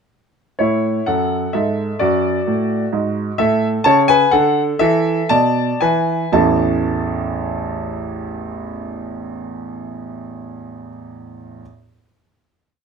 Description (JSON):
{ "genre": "classical-period piano sonatina", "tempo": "114-130 BPM", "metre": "3/4", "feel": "straight", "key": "A major", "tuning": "A4 = 440 Hz", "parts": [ { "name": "clear concert grand piano", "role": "solo", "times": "0.6-11.6 s", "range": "A1 to A5", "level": "-16 LUFS", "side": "equal", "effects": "none" } ], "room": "light reverb", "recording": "close, detailed microphones", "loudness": "-15 LUFS", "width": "side -6 dB against mid", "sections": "0.6-6.3 A section; 6.3-9.4 final chord", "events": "slowing down 2.7-6.3", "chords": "0.6 A; 2.0 D/F#; 2.9 N.C.; 3.4 A; 4.3 D; 4.8 E7sus4; 5.8 E; 6.3 A", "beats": "| 0.60 1.07 1.54 | 2.00 2.47 2.93 | 3.39 3.85 4.33 | 4.81 5.30 5.81 | 6.33 6.85 7.36 | 7.88 8.39 8.90" }